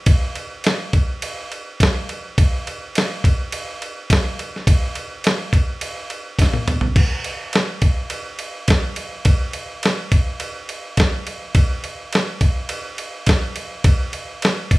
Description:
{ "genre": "metal", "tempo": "104 BPM", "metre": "4/4", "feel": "straight", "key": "none", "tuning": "none", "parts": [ { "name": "dusty soul sampler-style drum kit", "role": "drums", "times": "0.1-14.8 s", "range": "crash cymbal, kick drum, ride cymbal, snare drum, toms", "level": "-18 LUFS", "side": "equal", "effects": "none" } ], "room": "light reverb", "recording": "band playing live in one room", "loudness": "-18 LUFS", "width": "side -21 dB against mid", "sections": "0.0-14.8 A section", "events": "drum fill 6.4-7.0", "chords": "none" }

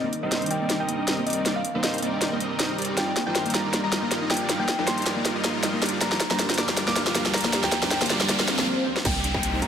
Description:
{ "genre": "future bass", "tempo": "158 BPM", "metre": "4/4", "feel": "swing 54% on 16ths, half-time", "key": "C minor", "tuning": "A4 = 441 Hz", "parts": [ { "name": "thumb-piano-like synth pluck", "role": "melody", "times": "0.0-9.7 s", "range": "Eb5 to D6", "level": "-31 LUFS", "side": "left 1 dB", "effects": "chorus, sidechain pumping, digital delay" }, { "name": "shimmering ambient pad", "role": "sustained chords", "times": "0.0-9.7 s", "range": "D2 to Bb4", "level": "-36 LUFS", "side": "equal", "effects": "chorus, built-in reverb, vintage 12-bit sampler grit, sidechain pumping" }, { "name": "thumb-piano-like synth pluck", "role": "arpeggios", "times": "0.0-9.7 s", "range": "Bb3 to G4", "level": "-32 LUFS", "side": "equal", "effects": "chorus, sidechain pumping, digital delay" }, { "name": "dense compressed supersaw", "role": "riff", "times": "0.0-9.7 s", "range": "G3 to F5", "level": "-28 LUFS", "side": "equal", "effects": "sidechain pumping, low-pass filter" }, { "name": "riser, swell and downlifter", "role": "sound effects", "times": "1.6-9.7 s", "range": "none", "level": "-31 LUFS", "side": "equal", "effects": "none" }, { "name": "trap drum kit", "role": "drums", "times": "0.1-9.7 s", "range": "crash cymbal, hi-hat, snare drum, toms", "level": "-26 LUFS", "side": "equal", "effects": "overdrive, high-pass filter on snare, high-pass filter on hats, high-pass filter on toms, high-pass filter on cymbals" }, { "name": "saturated sub bass", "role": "bass", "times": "9.1-9.7 s", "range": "C2", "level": "-29 LUFS", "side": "equal", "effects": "tube saturation, sidechain pumping" }, { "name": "electronic kick drum", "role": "drums", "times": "9.1-9.7 s", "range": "none", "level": "-28 LUFS", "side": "equal", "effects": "distortion" } ], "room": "moderate lush hall reverb, RT60 2.1 s", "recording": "none", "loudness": "-22 LUFS", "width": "side -8 dB against mid", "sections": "0.0-9.1 A section", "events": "build-up 0.0-9.1; drum fill 0.0-8.7, 8.9; filter sweep on synth pluck 0.0-9.1; filter sweep on synth arpeggio sound 0.0-9.1; filter sweep on ambient pad 0.0-9.1; riser 1.6-8.7; swell 8.3-9.1; break 8.7-9.1", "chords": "0.0 Cm9; 3.0 Ebmaj9; 5.8 Gm7/D; 9.1 Cm9" }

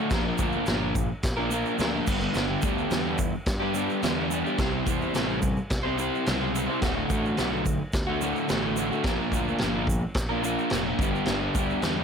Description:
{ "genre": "garage rock duo or trio", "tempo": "108 BPM", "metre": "4/4", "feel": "straight", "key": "unclear", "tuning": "A4 = 438 Hz", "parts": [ { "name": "crunchy overdriven guitar", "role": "riff", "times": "0.0-12.0 s", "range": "D2 to C5", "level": "-26 LUFS", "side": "equal", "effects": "none" }, { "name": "fuzz picked electric bass", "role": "bass", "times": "0.1-12.0 s", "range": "D1 to G2", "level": "-33 LUFS", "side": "equal", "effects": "overdrive" }, { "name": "vintage drum kit", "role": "drums", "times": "0.1-12.0 s", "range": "crash cymbal, kick drum, snare drum", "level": "-29 LUFS", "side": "equal", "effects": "none" }, { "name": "tube shaker", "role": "percussion", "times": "0.1-12.0 s", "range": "none", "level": "-42 LUFS", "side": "right 10 dB", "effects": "none" } ], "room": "light reverb, small room ambience", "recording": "none", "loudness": "-24 LUFS", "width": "side -6 dB against mid", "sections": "0.0-12.0 A section", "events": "none", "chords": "0.1 Bb; 2.1 G; 4.6 C; 6.8 D; 9.0 Bb; 11.0 G" }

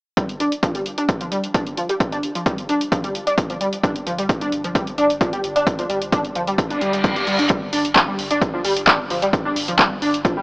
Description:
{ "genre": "driving peak-time techno", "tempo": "131 BPM", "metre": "4/4", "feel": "straight", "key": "unclear", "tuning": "A4 = 440 Hz", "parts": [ { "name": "overdriven synth lead", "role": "riff", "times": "0.2-10.4 s", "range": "F3 to G4", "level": "-21 LUFS", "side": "equal", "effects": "distortion, tube saturation, ensemble chorus, sidechain pumping, tape echo" }, { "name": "electronic kick drum", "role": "drums", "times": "0.2-10.3 s", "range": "none", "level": "-21 LUFS", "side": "equal", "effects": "none" }, { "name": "techno drum kit", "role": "drums", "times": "0.2-10.3 s", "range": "handclaps, hi-hat", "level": "-21 LUFS", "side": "equal", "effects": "overdrive, sidechain pumping on hats" }, { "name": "saturated sub bass", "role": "bass", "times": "4.0-10.4 s", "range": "G1", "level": "-40 LUFS", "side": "equal", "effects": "tube saturation, sidechain pumping, low-pass filter" }, { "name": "reverse cymbal", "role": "sound effects", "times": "6.8-7.5 s", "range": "none", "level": "-26 LUFS", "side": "equal", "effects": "none" } ], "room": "light reverb", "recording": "dry, gritty hardware recording, AM radio sound", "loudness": "-17 LUFS", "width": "side -30 dB against mid", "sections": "0.2-7.5 A section; 7.5-10.4 B section", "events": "reverse cymbal 6.8-7.5", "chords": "0.2 G5" }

